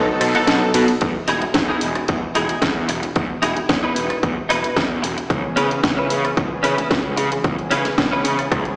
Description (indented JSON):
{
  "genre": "nu-disco, nu disco",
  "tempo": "112 BPM",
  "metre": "4/4",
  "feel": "straight",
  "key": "E major",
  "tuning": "A4 = 439 Hz",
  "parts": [
    { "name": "soft octave-layered synth lead", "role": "melody", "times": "0.0-0.8 s", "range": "D#5", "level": "-31 LUFS", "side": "equal", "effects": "chorus, tape echo" },
    { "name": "mellow synth brass", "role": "accompaniment", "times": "0.0-0.9, 5.3-8.8 s", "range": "E3 to A4", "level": "-26 LUFS", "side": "equal", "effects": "chorus, analog delay" },
    { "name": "direct-recorded clean electric guitar", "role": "riff", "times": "0.0-8.5 s", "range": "B3 to B4", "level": "-25 LUFS", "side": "equal", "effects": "ensemble chorus, analog delay" },
    { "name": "fuzz picked electric bass", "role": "bass", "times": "0.0-8.7 s", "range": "E1 to C#3", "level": "-24 LUFS", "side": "equal", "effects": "overdrive" },
    { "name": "house drum kit", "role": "drums", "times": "0.2-8.8 s", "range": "hi-hat, ride cymbal, rim click, snare drum", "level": "-27 LUFS", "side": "equal", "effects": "overdrive" },
    { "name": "electronic kick drum", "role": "drums", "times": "1.0-8.6 s", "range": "none", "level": "-26 LUFS", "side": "equal", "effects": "overdrive" }
  ],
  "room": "moderate plate reverb, RT60 2.3 s",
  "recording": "played on a big sound system in a bare room, large studio reverb, small speaker sound",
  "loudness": "-20 LUFS",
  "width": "mono",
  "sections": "0.0-1.0 A section; 1.0-8.8 B section",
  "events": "drop 0.0-1.0; kick drops out 0.5-1.0",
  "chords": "0.0 B7; 1.0 Emaj7; 5.3 C#m7"
}